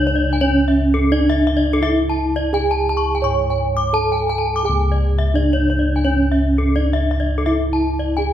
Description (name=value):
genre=Balinese gamelan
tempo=85 BPM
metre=4/4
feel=straight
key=C# pelog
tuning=A4 = 440 Hz
part: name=gamelan-type bronze metallophone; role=melody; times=0.0-8.3 s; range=C#4 to C#5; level=-19 LUFS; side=right 2 dB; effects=none
part: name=gamelan-type bossed gongs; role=bass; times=0.0-8.3 s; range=C#2 to G#4-30c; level=-20 LUFS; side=equal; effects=none
part: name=gamelan-type bronze metallophone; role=arpeggios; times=0.1-8.3 s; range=A4-20c to D6+20c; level=-22 LUFS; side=left 2 dB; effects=none
room=wet recital hall reverb, RT60 1.4 s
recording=heard from further back in the room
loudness=-15 LUFS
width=side -10 dB against mid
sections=0.0-8.3 A section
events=none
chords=none